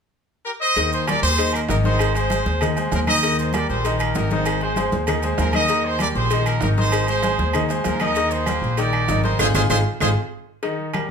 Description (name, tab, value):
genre	latin, salsa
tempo	195 BPM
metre	4/4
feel	straight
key	Eb major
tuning	A4 = 440 Hz
part	bright trumpet section	melody	0.5-10.1 s	F4 to Eb5	-23 LUFS	right 1 dB	none
part	bright grand piano	accompaniment	0.8-11.1 s	Eb3 to G5	-24 LUFS	left 2 dB	none
part	upright bass	bass	0.8-10.1 s	Ab1 to Eb2	-23 LUFS	equal	none
part	agogo bells and timbales	percussion	0.8-11.1 s	none	-28 LUFS	right 5 dB	none
part	congas	percussion	0.8-11.1 s	none	-29 LUFS	left 1 dB	none
part	cowbell	percussion	0.8-11.1 s	none	-30 LUFS	left 7 dB	none
part	maracas	percussion	0.8-10.1 s	none	-37 LUFS	right 6 dB	none
part	claves	percussion	1.1-11.1 s	none	-34 LUFS	left 1 dB	none
room	moderate large studio reverb, RT60 0.8 s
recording	band playing live in one room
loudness	-18 LUFS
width	side -6 dB against mid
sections	0.8-10.6 A section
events	drum fill 9.4-10.6; band accent 9.4-10.6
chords	0.0 N.C.; 0.8 Eb; 2.0 Ab; 3.2 Eb; 4.5 Ab; 5.7 Eb; 6.9 Ab; 8.2 Eb; 9.4 Ab5